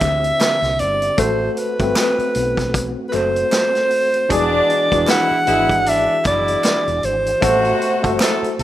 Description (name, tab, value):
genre	lush 1970s-style soul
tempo	77 BPM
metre	4/4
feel	swing 58% on 16ths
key	A dorian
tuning	A4 = 440 Hz
part	clear alto saxophone	melody	0.0-8.6 s	B4 to F#5	-18 LUFS	right 1 dB	none
part	tine electric piano	accompaniment	0.0-8.6 s	D3 to E5	-22 LUFS	left 2 dB	overdrive, fast stereo tremolo
part	percussive tonewheel organ	sustained chords	0.0-8.6 s	D3 to G#4	-33 LUFS	right 1 dB	none
part	hollow-body short-scale fingered electric bass	bass	0.0-8.6 s	E1 to D2	-26 LUFS	equal	none
part	vintage drum kit	drums	0.0-8.6 s	hi-hat, kick drum, snare drum	-22 LUFS	equal	none
part	group handclap	percussion	0.0-8.4 s	none	-29 LUFS	right 2 dB	none
part	warm horn section	stabs	4.3-8.6 s	B2 to A4	-22 LUFS	left 1 dB	tape echo
room	small room ambience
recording	rough home demo mix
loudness	-15 LUFS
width	side -13 dB against mid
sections	0.0-8.6 A section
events	none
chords	0.0 D9sus4; 1.2 Am69; 4.3 E9; 7.4 Am69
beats	0.41 | 1.19 1.97 2.75 3.52 | 4.30 5.08 5.86 6.64 | 7.42 8.20